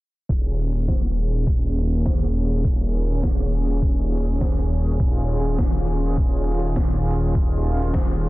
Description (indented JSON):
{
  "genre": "synthwave",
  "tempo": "102 BPM",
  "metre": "4/4",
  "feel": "straight",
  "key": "unclear",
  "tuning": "A4 = 442 Hz",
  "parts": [
    { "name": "brassy analog pad", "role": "sustained chords", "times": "0.3-8.3 s", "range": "Eb3 to Ab4", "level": "-27 LUFS", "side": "equal", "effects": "chorus, tremolo, vintage 12-bit sampler grit, sidechain pumping" },
    { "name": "wide detuned saw bass", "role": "bass", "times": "0.3-8.3 s", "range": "Eb1", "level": "-22 LUFS", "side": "equal", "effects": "chorus, sidechain pumping" },
    { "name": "electronic kick drum", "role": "drums", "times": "0.3-8.1 s", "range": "none", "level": "-21 LUFS", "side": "equal", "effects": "none" },
    { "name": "electronic snare drum", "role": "drums", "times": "0.9-8.1 s", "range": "none", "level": "-31 LUFS", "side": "equal", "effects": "gated reverb, gated reverb snare, overdrive" }
  ],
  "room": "little or no reverb",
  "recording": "dense, heavily limited modern master, low-pass filter",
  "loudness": "-19 LUFS",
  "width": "side -19 dB against mid",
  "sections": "0.3-8.3 A section",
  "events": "filter sweep on detuned saw bass 0.3-8.3; filter sweep 0.3-8.3",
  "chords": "0.3 Bbm7/Eb; 5.0 Db/Eb"
}